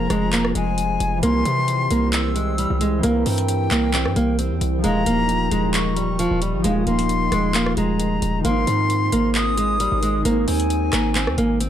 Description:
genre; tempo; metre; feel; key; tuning
hip hop, trap; 133 BPM; 4/4; half-time; unclear; A4 = 440 Hz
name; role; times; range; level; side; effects
nylon-string guitar; melody; 0.0-11.7 s; F3 to C4; -23 LUFS; right 2 dB; none
bright silver concert flute; second line; 0.0-11.6 s; G5 to E6; -26 LUFS; left 3 dB; tape echo
concert harp; accompaniment; 0.0-11.7 s; Eb3 to Bb4; -26 LUFS; left 1 dB; none
glassy FM pad; sustained chords; 0.0-11.7 s; Eb4 to Ab5; -30 LUFS; equal; ensemble chorus, built-in reverb
hard-hitting 808-style bass; bass; 0.0-11.7 s; Eb1 to C3; -24 LUFS; equal; none
trap drum kit; drums; 0.1-11.7 s; handclaps, hi-hat, rim click; -26 LUFS; equal; none
room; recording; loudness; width
studio ambience; dark, warm production; -18 LUFS; side -10 dB against mid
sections
0.0-11.7 A section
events
none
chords
0.0 Fm; 1.2 C; 4.8 Ebadd9; 8.4 Abadd9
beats
0.33 0.78 | 1.23 1.68 2.13 2.58 | 3.03 3.48 3.94 4.39 | 4.84 5.29 5.74 6.19 | 6.64 7.09 7.54 8.00 | 8.45 8.90 9.35 9.80 | 10.25 10.70 11.15 11.61

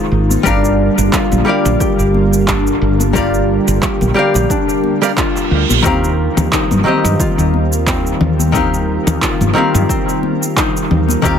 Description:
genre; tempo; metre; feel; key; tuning
sunset chillout; 89 BPM; 4/4; swing 56% on 16ths; Eb major; A4 = 440 Hz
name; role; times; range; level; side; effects
archtop guitar, miked and amplified; accompaniment; 0.0-11.4 s; Eb3 to F5; -17 LUFS; moving between left 5 dB and right 4 dB; auto-pan, dub echo
lush unison pad; sustained chords; 0.0-11.4 s; D3 to Bb4; -21 LUFS; right 1 dB; chorus
concert harp; arpeggios; 0.0-11.4 s; C4 to G4; -20 LUFS; left 5 dB; dub echo
woody fretless electric bass; bass; 0.1-11.4 s; G1 to G2; -16 LUFS; right 1 dB; lush chorus
electronic shaker, handclaps and congas; drums; 0.3-11.4 s; none; -21 LUFS; equal; overdrive, small room ambience, dub echo
congas; percussion; 0.3-11.2 s; none; -24 LUFS; left 4 dB; none
electronic kick drum; drums; 0.5-11.4 s; none; -21 LUFS; right 1 dB; overdrive, small room ambience
reverse cymbal; sound effects; 5.3-5.8 s; none; -22 LUFS; right 10 dB; none
room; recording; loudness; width
light reverb, digital ambience; echo-heavy mix; -12 LUFS; side -8 dB against mid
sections
0.0-11.4 A section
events
reverse cymbal 5.3-5.8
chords
0.5 Gm7; 5.8 Eb69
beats
| 0.46 1.13 1.80 2.48 | 3.15 3.83 4.50 5.18 | 5.85 6.52 7.20 7.87 | 8.55 9.22 9.89 10.57 | 11.24

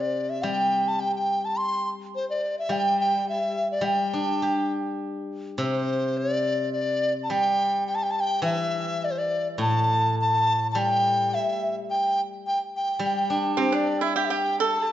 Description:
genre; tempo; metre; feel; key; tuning
chinese traditional, Chinese chamber ensemble; 106 BPM; 2/4; rubato; G zhi mode; A4 = 445 Hz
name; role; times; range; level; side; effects
mellow hollow large dizi; melody; 0.0-14.9 s; C5 to C6; -24 LUFS; equal; none
steel-string zither; accompaniment; 0.0-14.7 s; A2 to G4; -27 LUFS; equal; none
pipa; second line; 13.6-14.9 s; C4 to A4; -25 LUFS; right 6 dB; none
room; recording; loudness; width
wet recital hall reverb, RT60 1.6 s; nothing above 7.7 kHz; -22 LUFS; side -12 dB against mid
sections
0.0-5.0 A section; 5.0-14.2 B section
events
none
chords
none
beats
| 0.45 1.02 | 1.59 2.15 | 2.71 3.28 | 3.85 4.43 | 5.03 5.61 | 6.19 6.75 | 7.32 7.88 | 8.44 9.02 | 9.62 10.20 | 10.77 11.33 | 11.89 12.46 | 13.01 13.59 | 14.18 14.75

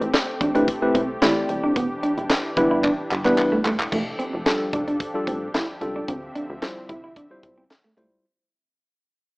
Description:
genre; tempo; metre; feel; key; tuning
early-eighties boogie funk; 111 BPM; 4/4; straight; unclear; A4 = 438 Hz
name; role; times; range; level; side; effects
tine electric piano; accompaniment; 0.0-8.2 s; G3 to D5; -22 LUFS; equal; medium stereo tremolo
warm analog pad; sustained chords; 0.0-8.2 s; D3 to E5; -31 LUFS; equal; wide subtle chorus
electric guitar through a small old amp; riff; 0.0-8.1 s; A3 to E4; -26 LUFS; right 1 dB; wide subtle chorus
plucky analog bass; bass; 0.0-8.2 s; D#1 to D2; -32 LUFS; equal; none
tight funk drum kit; drums; 0.0-8.1 s; crash cymbal, handclaps, hi-hat, kick drum, snare drum; -24 LUFS; equal; none
room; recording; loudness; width
light reverb, small room ambience; rough home demo mix, AM radio sound; -20 LUFS; side -26 dB against mid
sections
0.0-3.9 A section; 3.9-8.2 B section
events
drum fill 2.8-3.9; fade-out 3.9-8.2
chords
0.0 Am9; 1.8 Em7; 3.9 F69; 6.1 Dm11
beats
0.14 0.68 1.22 | 1.76 2.30 2.84 3.38 | 3.92 4.46 5.00 5.54 | 6.08 6.62 7.17 7.71

